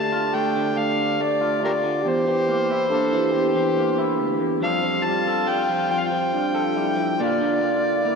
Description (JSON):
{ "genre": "acoustic folk-pop ballad", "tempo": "47 BPM (dotted quarters)", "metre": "6/8", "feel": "straight", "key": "unclear", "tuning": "A4 = 441 Hz", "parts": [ { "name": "overdriven harmonica", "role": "melody", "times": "0.0-8.2 s", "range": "G4 to A5", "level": "-23 LUFS", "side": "equal", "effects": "none" }, { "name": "French horn with straight mute", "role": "second line", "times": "0.0-8.2 s", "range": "D4 to A4", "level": "-27 LUFS", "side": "left 4 dB", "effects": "none" }, { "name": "electric guitar through a small old amp", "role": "accompaniment", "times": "0.0-8.2 s", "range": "D2 to A4", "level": "-25 LUFS", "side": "right 2 dB", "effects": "none" }, { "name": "vibraphone with soft mallets", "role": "arpeggios", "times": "0.0-7.6 s", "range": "D4 to A4", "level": "-28 LUFS", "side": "right 3 dB", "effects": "ping-pong delay" } ], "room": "wet lush hall reverb, RT60 3.1 s", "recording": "dreamy mix soaked in reverb", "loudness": "-19 LUFS", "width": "side -5 dB against mid", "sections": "0.0-8.2 A section", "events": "none", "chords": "0.0 Dm; 2.0 C7/E; 4.6 Fadd9; 7.2 Bb", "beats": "0.74 | 2.03 3.32 | 4.60 5.89 | 7.18" }